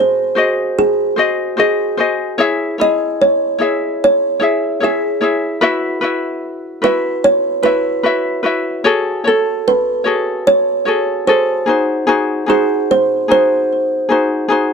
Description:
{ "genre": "acoustic pop", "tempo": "74 BPM", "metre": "4/4", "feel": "straight", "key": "unclear", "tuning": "A4 = 440 Hz", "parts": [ { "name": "kalimba", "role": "melody", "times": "0.0-14.5 s", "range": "G#4 to D#5", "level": "-15 LUFS", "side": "right 2 dB", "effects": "none" }, { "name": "ukulele", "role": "accompaniment", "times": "0.0-14.7 s", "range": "D#4 to E5", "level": "-16 LUFS", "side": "left 3 dB", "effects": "none" } ], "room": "light reverb", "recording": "dark, warm production", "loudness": "-13 LUFS", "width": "side -6 dB against mid", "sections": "0.0-14.7 A section", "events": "none", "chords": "0.0 G#7; 2.4 C#m; 5.6 Bsus4; 8.8 F#madd9; 11.7 G#7" }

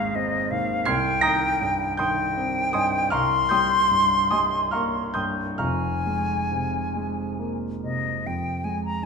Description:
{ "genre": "classical, impressionist duo for flute and grand piano", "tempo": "43-57 BPM (dotted quarters)", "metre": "6/8", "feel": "rubato", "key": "F minor", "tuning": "A4 = 440 Hz", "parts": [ { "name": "silver concert flute", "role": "melody", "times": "0.0-9.1 s", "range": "Eb5 to C6", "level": "-24 LUFS", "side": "left 2 dB", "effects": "none" }, { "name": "warm concert grand piano", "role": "accompaniment", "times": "0.0-9.1 s", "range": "F1 to C7", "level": "-25 LUFS", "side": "right 1 dB", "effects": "none" } ], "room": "wet recital hall reverb, RT60 1.7 s", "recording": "minimal, uncompressed stereo recording", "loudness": "-21 LUFS", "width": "side -5 dB against mid", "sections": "0.0-8.3 A section", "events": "none", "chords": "0.0 Abadd9; 0.9 Cm7; 5.6 Fmadd11; 8.3 Fmadd9" }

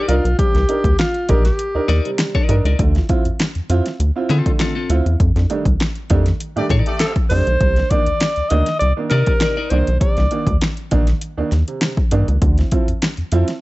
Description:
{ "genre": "funk", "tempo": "100 BPM", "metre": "4/4", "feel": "straight", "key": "unclear", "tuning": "A4 = 445 Hz", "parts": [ { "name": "breathy alto saxophone", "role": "melody", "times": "0.0-2.0, 7.0-10.6 s", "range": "F4 to Eb5", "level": "-20 LUFS", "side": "equal", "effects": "slapback echo" }, { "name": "clean electric guitar", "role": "accompaniment", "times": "0.0-9.8 s", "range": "C4 to D5", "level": "-24 LUFS", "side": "left 5 dB", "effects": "none" }, { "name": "warm upright piano", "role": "stabs", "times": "0.1-13.4 s", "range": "C3 to Bb4", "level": "-23 LUFS", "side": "right 4 dB", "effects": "none" }, { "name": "rubbery square bass", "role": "bass", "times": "0.1-13.4 s", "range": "Bb1 to D3", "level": "-16 LUFS", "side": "equal", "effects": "none" }, { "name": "deep house drum kit", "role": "drums", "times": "0.1-13.6 s", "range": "hi-hat, kick drum, snare drum", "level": "-19 LUFS", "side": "equal", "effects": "overdrive" }, { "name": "warm horn section", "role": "second line", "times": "6.6-7.1 s", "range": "A3 to D5", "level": "-26 LUFS", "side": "left 1 dB", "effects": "none" } ], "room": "little or no reverb", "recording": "nothing above 7.9 kHz", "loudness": "-15 LUFS", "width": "side -19 dB against mid", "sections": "0.0-13.6 A section", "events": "band accent 5.2-7.6", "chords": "0.0 Cm9; 2.8 Dm7; 5.2 F13; 7.6 Cm9; 12.4 Dm7" }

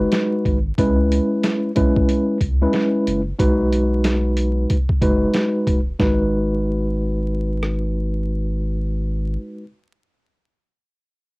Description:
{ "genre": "hip hop, boom-bap hip-hop", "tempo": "92 BPM", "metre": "4/4", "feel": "swing 61% on 16ths", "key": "G# minor", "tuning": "A4 = 441 Hz", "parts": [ { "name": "mellow tine electric piano", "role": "accompaniment", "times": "0.0-9.6 s", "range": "G#3 to B4", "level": "-20 LUFS", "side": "equal", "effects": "medium stereo tremolo, cassette tape, high-pass filter, low-pass filter" }, { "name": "soft dub sub bass", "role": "bass", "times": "0.0-9.4 s", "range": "D#1 to C#2", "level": "-22 LUFS", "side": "equal", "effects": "none" }, { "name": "boom bap sampler-style drum kit", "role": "drums", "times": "0.1-7.8 s", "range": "hi-hat, kick drum, rim click, snare drum", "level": "-21 LUFS", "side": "equal", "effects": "vintage 12-bit sampler grit, cassette tape" } ], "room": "light reverb", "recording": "home recording on cassette, vinyl crackle", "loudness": "-17 LUFS", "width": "side -26 dB against mid", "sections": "0.0-6.0 A section; 6.0-8.6 B section", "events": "none", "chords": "0.0 G#m7; 0.8 C#m7; 3.4 G#m7/B; 6.0 G#m7" }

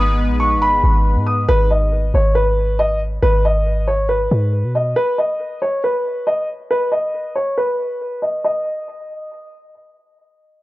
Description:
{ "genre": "hip hop", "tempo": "138 BPM", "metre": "4/4", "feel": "half-time", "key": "G# minor", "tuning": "A4 = 437 Hz", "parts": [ { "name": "dark grand piano", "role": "melody", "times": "0.0-9.7 s", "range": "B4 to D#6", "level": "-18 LUFS", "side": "equal", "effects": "low-pass filter, analog delay" }, { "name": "sweeping resonant pad", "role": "sustained chords", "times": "0.0-1.5 s", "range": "G#3 to B4", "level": "-25 LUFS", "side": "left 1 dB", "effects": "chorus" }, { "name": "warm 808-style bass", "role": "bass", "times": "0.0-5.0 s", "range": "G#1 to B2", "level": "-17 LUFS", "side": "equal", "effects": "none" } ], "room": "small room ambience", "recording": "dry, gritty hardware recording", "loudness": "-15 LUFS", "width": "side -18 dB against mid", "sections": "0.0-1.5 A section; 1.5-8.4 B section; 8.4-10.6 C section", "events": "filter sweep on grand piano 1.5-8.4", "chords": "0.0 G#m; 5.0 N.C." }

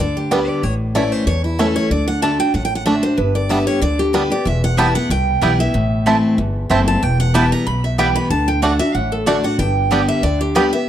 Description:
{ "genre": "bluegrass", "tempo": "187 BPM", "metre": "4/4", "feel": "swing 54% on 8ths", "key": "G major", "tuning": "A4 = 439 Hz", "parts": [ { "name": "picked steel-string acoustic guitar", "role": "melody", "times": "0.0-10.9 s", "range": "E4 to B5", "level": "-20 LUFS", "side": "right 1 dB", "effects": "none" }, { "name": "picked steel-string acoustic guitar", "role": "accompaniment", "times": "0.0-10.9 s", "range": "E2 to G4", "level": "-19 LUFS", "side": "left 1 dB", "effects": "none" }, { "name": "upright bass", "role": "bass", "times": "0.0-10.7 s", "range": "E1 to E2", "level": "-20 LUFS", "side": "equal", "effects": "none" }, { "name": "bluegrass banjo", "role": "arpeggios", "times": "0.3-10.6 s", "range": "G3 to E4", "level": "-24 LUFS", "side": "right 3 dB", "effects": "slapback echo" }, { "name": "mandolin", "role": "stabs", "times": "4.8-10.7 s", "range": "A3 to A5", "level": "-22 LUFS", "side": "right 5 dB", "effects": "slapback echo" } ], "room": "small room ambience", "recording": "dry, close 1970s-style studio recording", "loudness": "-15 LUFS", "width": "side -10 dB against mid", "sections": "0.0-10.9 A section", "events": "steel-string acoustic guitar solo 0.0-10.9", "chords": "0.0 G; 0.6 A; 1.9 D; 3.2 G; 4.5 Em; 5.7 Am; 7.0 Em; 8.3 D; 9.6 G" }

